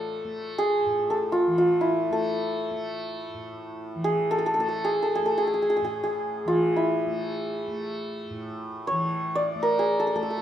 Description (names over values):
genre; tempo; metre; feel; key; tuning
indian classical, Hindustani; free time; none; none; unclear; A4 = 440 Hz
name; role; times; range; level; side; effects
santur; melody; 0.0-10.4 s; E4 to D5; -24 LUFS; equal; none
tanpura; drone; 0.0-10.4 s; A2 to A3; -34 LUFS; right 1 dB; none
room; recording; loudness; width
moderate recital hall reverb, RT60 1.7 s; minimal, uncompressed stereo recording; -23 LUFS; side -10 dB against mid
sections
0.0-10.4 A section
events
none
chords
none